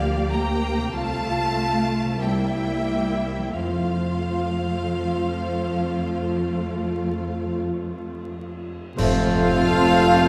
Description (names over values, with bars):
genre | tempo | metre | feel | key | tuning
classical, slow romantic movement for symphony orchestra | 43-51 BPM | 4/4 | rubato | F major | A4 = 440 Hz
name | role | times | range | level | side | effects
rich studio violin section | melody | 0.0-10.3 s | F5 to Bb5 | -30 LUFS | equal | none
rich studio violin section | second line | 0.0-10.3 s | F4 to G5 | -35 LUFS | equal | none
rich studio viola section | accompaniment | 0.0-10.3 s | A3 to G4 | -30 LUFS | equal | none
concert harp | arpeggios | 0.0-10.3 s | C3 to D5 | -36 LUFS | equal | none
rich studio cello section | bass | 0.0-7.7 s | F3 to Bb3 | -32 LUFS | equal | none
rich studio double bass section | bass | 0.0-10.3 s | C2 to F2 | -29 LUFS | equal | none
cymbal swell, clash cymbals and concert bass drum | percussion | 3.5-10.3 s | none | -33 LUFS | equal | none
clear oboe | second line | 9.0-10.3 s | C5 | -31 LUFS | equal | none
silver concert flute | second line | 9.0-10.3 s | A4 | -27 LUFS | equal | none
warm clarinet | second line | 9.0-10.3 s | F4 | -27 LUFS | equal | none
mellow bassoon | accompaniment | 9.0-10.3 s | A3 | -30 LUFS | equal | none
warm French horn section | sustained chords | 9.0-9.4 s | A3 to C5 | -34 LUFS | equal | none
clear tuba | bass | 9.0-10.3 s | F1 | -29 LUFS | equal | none
room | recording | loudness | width
wet concert hall reverb, RT60 1.9 s | heard from further back in the room, vinyl crackle | -23 LUFS | mono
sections
0.0-9.0 A section; 9.0-10.3 B section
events
band accent 9.0-10.2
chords
0.0 Gm7/D; 0.9 F/C; 2.2 C7; 3.6 F